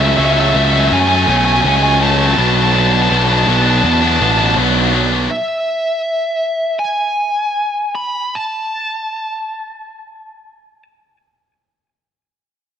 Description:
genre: post-rock.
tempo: 64-82 BPM.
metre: 4/4.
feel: straight.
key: unclear.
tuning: A4 = 438 Hz.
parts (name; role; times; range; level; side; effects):
bluesy overdriven lead guitar; melody; 0.0-10.8 s; E5 to B5; -17 LUFS; equal; distortion, tape echo.
distorted electric guitar; riff; 0.0-5.3 s; B2 to D4; -14 LUFS; left 1 dB; overdrive.
fuzz picked electric bass; bass; 0.0-5.3 s; A1 to F#2; -16 LUFS; equal; overdrive.
room: light reverb, digital ambience.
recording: none.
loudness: -12 LUFS.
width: side -8 dB against mid.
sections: 0.0-5.3 A section; 5.3-11.8 B section; 11.8-12.8 C section.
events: slowing down 5.3-11.8.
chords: 0.0 F#m7/C#; 2.4 Bm7; 5.3 N.C..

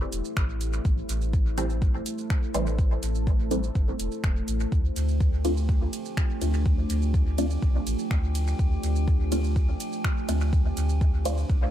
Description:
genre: dub techno.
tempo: 124 BPM.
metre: 4/4.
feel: straight.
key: unclear.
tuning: A4 = 441 Hz.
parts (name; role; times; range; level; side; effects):
deep dark ambient pad; sustained chords; 0.0-11.7 s; A3 to C5; -33 LUFS; right 1 dB; chorus, built-in reverb, sidechain pumping.
soft dub sub bass; bass; 0.0-11.7 s; E1 to D2; -27 LUFS; equal; sidechain pumping.
deep house drum kit; drums; 0.1-11.6 s; finger snaps, hi-hat, ride cymbal, shaker; -38 LUFS; right 2 dB; dub echo.
electronic kick drum; drums; 0.4-11.6 s; none; -24 LUFS; equal; none.
filtered dub chord stab; stabs; 1.6-11.3 s; E3 to F4; -31 LUFS; equal; phaser, sidechain pumping, dub echo.
metallic inharmonic drone; texture; 5.4-11.7 s; G4; -41 LUFS; left 1 dB; chorus, built-in reverb, sidechain pumping.
room: digital ambience.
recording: echo-heavy mix.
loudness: -23 LUFS.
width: side -11 dB against mid.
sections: 0.0-11.7 A section.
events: filter sweep on synth stab 0.0-11.7.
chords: 0.0 Am7; 4.7 Dm7.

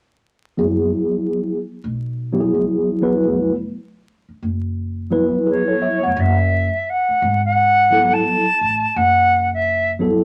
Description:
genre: hip hop, jazz-hop.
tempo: 86 BPM.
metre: 4/4.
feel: swing 61% on 16ths.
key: F# minor.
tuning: A4 = 436 Hz.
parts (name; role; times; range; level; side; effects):
mellow tine electric piano; accompaniment; 0.6-10.2 s; F#3 to F#5; -20 LUFS; equal; low-pass filter.
upright bass; bass; 0.6-10.2 s; E#1 to C#2; -25 LUFS; equal; none.
silver concert flute; melody; 5.5-9.9 s; C#5 to A5; -18 LUFS; equal; none.
room: wet club reverb, RT60 0.6 s.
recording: vinyl crackle.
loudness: -18 LUFS.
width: mono.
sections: 0.6-6.2 A section; 6.2-10.2 B section.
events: filter sweep on tine electric piano 0.6-6.2.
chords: 0.6 F#9sus4; 6.2 F#m11.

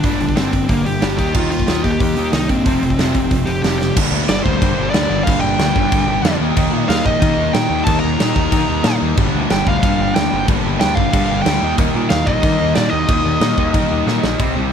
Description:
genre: punk rock.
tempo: 184 BPM.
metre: 4/4.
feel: straight.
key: G minor.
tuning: A4 = 440 Hz.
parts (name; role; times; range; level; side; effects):
smooth overdriven lead guitar; melody; 0.0-14.1 s; Bb3 to Bb5; -21 LUFS; equal; digital delay.
fuzz guitar; riff; 0.0-14.2 s; F2 to G4; -22 LUFS; right 1 dB; distortion.
sludgy distorted guitar; riff; 0.0-14.7 s; F2 to Eb4; -22 LUFS; left 12 dB; overdrive.
tight distorted guitar; riff; 0.0-14.7 s; F2 to Eb4; -24 LUFS; right 13 dB; distortion.
growling picked electric bass; bass; 0.0-14.7 s; F1 to Eb3; -22 LUFS; equal; overdrive.
big rock drum kit; drums; 0.0-14.5 s; crash cymbal, hi-hat, kick drum, snare drum; -19 LUFS; right 1 dB; none.
room: light reverb.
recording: none.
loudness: -14 LUFS.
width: side -7 dB against mid.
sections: 0.0-4.0 A section; 4.0-14.4 B section.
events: drum fill 3.8, 14.1-14.4.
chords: 0.0 Gm; 1.2 Eb; 2.7 F; 4.0 Gm; 6.4 Eb; 9.2 Gm; 11.6 Eb.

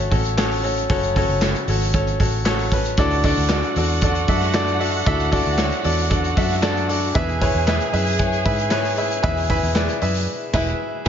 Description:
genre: piano-driven pop.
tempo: 115 BPM.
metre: 4/4.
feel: straight.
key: unclear.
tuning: A4 = 436 Hz.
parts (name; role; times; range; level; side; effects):
bright concert grand piano; accompaniment; 0.0-11.1 s; A2 to A5; -22 LUFS; left 2 dB; none.
vintage muted fingered electric bass; bass; 0.0-11.1 s; E1 to G#2; -23 LUFS; right 1 dB; none.
modern studio drum kit; drums; 0.1-11.1 s; crash cymbal, handclaps, hi-hat, kick drum, snare drum; -23 LUFS; right 1 dB; none.
dark studio violin section; second line; 3.0-11.1 s; E4 to G#5; -27 LUFS; right 4 dB; none.
room: light reverb, small room ambience.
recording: nothing above 7.4 kHz.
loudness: -17 LUFS.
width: side -8 dB against mid.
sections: 0.0-11.1 A section.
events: grand piano fill 6.1-7.1; band accent 10.3-11.1.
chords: 0.0 F#m; 3.0 D; 7.1 E.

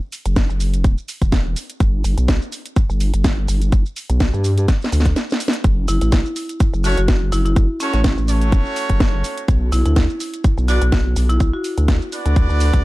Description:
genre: bass house.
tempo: 125 BPM.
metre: 4/4.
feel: swing 55% on 16ths.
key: F# phrygian.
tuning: A4 = 439 Hz.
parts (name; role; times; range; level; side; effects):
garage drum kit; drums; 0.1-12.8 s; hi-hat, shaker, snare drum; -24 LUFS; right 1 dB; none.
vowel-sweep wobble bass; bass; 0.3-12.8 s; E1 to G2; -17 LUFS; equal; chorus, overdrive, sidechain pumping.
electronic kick drum; drums; 0.4-12.8 s; none; -16 LUFS; equal; none.
marimba with medium hard mallets; melody; 5.9-12.0 s; C#4 to F#4; -25 LUFS; left 1 dB; ping-pong delay.
brilliant horn section; stabs; 6.8-12.8 s; A3 to D5; -25 LUFS; right 2 dB; sidechain pumping, ping-pong delay.
room: digital ambience.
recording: dark, warm production.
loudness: -15 LUFS.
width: side -19 dB against mid.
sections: 0.0-12.8 A section.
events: drum fill 4.7-5.6; break 5.2-5.6.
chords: 0.0 Esus2; 1.8 N.C.; 5.6 F#m; 9.5 Bm.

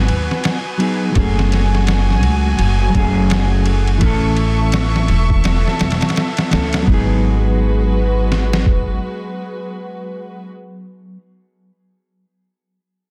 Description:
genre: trip hop.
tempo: 84 BPM.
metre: 4/4.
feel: swing 60% on 16ths.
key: G# phrygian.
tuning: A4 = 443 Hz.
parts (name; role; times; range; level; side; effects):
mellow electric guitar; accompaniment; 0.0-11.2 s; E3 to A4; -24 LUFS; equal; harmonic tremolo, tape echo.
dark studio string section; sustained chords; 0.0-10.5 s; G#3 to C#6; -27 LUFS; equal; none.
upright bass; bass; 0.0-9.0 s; E1 to D#2; -19 LUFS; equal; tube saturation.
trip hop sampler-style drum kit; drums; 0.1-8.9 s; kick drum, ride cymbal, snare drum; -22 LUFS; equal; studio reverb.
room: studio ambience.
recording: dense, heavily limited modern master.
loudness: -16 LUFS.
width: mono.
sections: 0.0-6.9 A section; 6.9-9.7 B section.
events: none.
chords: 0.0 G#m7; 1.2 F#madd9; 4.0 A; 6.9 G#m7.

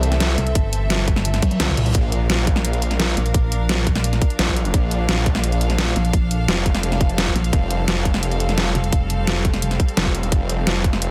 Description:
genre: dark technical drum and bass.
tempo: 172 BPM.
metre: 4/4.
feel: straight.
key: unclear.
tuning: A4 = 438 Hz.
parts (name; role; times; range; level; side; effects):
clear studio string section; sustained chords; 0.0-11.1 s; E3 to F5; -30 LUFS; equal; sidechain pumping.
snarling distorted saw bass; bass; 0.0-11.1 s; F1 to C2; -24 LUFS; equal; distortion, sidechain pumping.
dubstep drum kit; drums; 0.0-11.1 s; hi-hat, snare drum, toms; -24 LUFS; equal; overdrive.
pulsing pluck wobble bass; bass; 0.4-9.8 s; F1 to C2; -23 LUFS; equal; chorus, tube saturation.
electronic kick drum; drums; 0.6-10.9 s; none; -21 LUFS; equal; none.
reverse cymbal; sound effects; 1.5-1.9 s; none; -37 LUFS; equal; none.
room: light reverb.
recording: dense, heavily limited modern master.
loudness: -19 LUFS.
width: mono.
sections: 0.0-11.1 A section.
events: reverse cymbal 1.5-1.9; drum fill 1.4-1.9.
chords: 0.0 C; 1.9 Bb; 7.5 Fadd9.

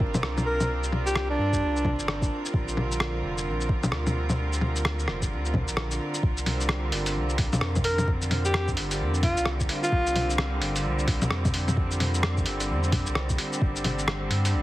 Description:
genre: future garage.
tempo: 130 BPM.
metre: 4/4.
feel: swing 62% on 16ths.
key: unclear.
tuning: A4 = 439 Hz.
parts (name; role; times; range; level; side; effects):
rich chamber string section; sustained chords; 0.0-14.6 s; D3 to Bb4; -31 LUFS; right 1 dB; vintage 12-bit sampler grit, sidechain pumping.
warm sub bass; bass; 0.0-14.6 s; F1 to G2; -29 LUFS; equal; tube saturation.
electronic kick drum; drums; 0.0-13.7 s; none; -27 LUFS; equal; none.
lo-fi sampler-style drum kit; drums; 0.1-14.5 s; bongos, hi-hat, rim click, shaker; -28 LUFS; left 1 dB; none.
breathy alto saxophone; melody; 0.5-1.9, 7.8-10.3 s; D4 to Bb4; -28 LUFS; equal; vintage 12-bit sampler grit, digital delay.
room: light reverb.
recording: heavily compressed radio sound, multiband compression, vinyl crackle.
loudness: -24 LUFS.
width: side -16 dB against mid.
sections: 0.0-6.2 A section; 6.2-14.6 B section.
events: kick drops out 5.8-6.2.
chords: 0.0 Gm7; 2.5 Bb69; 6.2 Gm7.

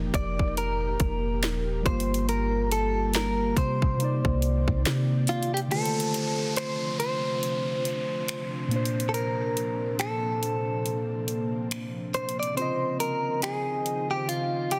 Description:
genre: contemporary R&B.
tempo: 70 BPM.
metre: 4/4.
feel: swing 58% on 16ths.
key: unclear.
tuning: A4 = 440 Hz.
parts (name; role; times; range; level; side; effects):
muted felt-like synth keys; accompaniment; 0.0-14.8 s; Bb2 to Eb5; -34 LUFS; equal; chorus.
ethereal airy pad; sustained chords; 0.0-14.8 s; Bb2 to D5; -39 LUFS; equal; ensemble chorus, built-in reverb.
soft 808-style bass; bass; 0.0-5.3 s; Eb1 to C3; -31 LUFS; equal; none.
trap drum kit; drums; 0.1-14.8 s; finger snaps, hi-hat, kick drum, snare drum; -32 LUFS; equal; soft clipping on snare.
direct-recorded clean electric guitar; melody; 0.2-14.8 s; F4 to D5; -32 LUFS; equal; delay.
downlifter; sound effects; 5.7-12.6 s; none; -40 LUFS; equal; none.
room: light reverb, digital ambience.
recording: dense, heavily limited modern master.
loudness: -27 LUFS.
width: mono.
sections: 0.0-5.7 A section; 5.7-14.8 B section.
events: kick muted 5.7-14.8.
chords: 0.0 F9sus4; 1.9 Gm7; 4.0 Cm9; 5.7 Dm7; 8.7 Bbmaj9; 12.6 Dbmaj9.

